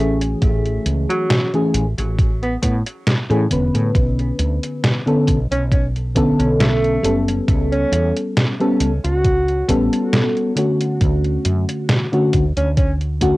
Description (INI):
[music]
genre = vaporwave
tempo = 68 BPM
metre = 4/4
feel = swing 54% on 16ths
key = A major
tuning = A4 = 440 Hz
[part]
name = dark alto saxophone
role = melody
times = 0.0-12.9 s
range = F#3 to F#4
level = -24 LUFS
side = right 1 dB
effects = cassette tape, tape echo
[part]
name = mellow FM electric piano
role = accompaniment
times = 0.0-13.4 s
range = D3 to B4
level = -19 LUFS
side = left 1 dB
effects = wide subtle chorus, cassette tape, tape echo
[part]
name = woody fretless electric bass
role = bass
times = 0.0-13.4 s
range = E1 to A2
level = -20 LUFS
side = equal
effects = none
[part]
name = detuned 8-bit digital drum machine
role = drums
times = 0.2-13.4 s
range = hi-hat, snare drum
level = -19 LUFS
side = equal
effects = none
[part]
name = electronic kick drum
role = drums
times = 0.4-13.4 s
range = none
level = -18 LUFS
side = equal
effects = none
[sound]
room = light reverb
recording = home recording on cassette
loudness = -15 LUFS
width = side -19 dB against mid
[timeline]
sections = 0.0-13.4 A section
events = none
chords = 0.4 Amaj7; 4.0 Bm9; 7.5 A9/C#; 11.0 Dmaj7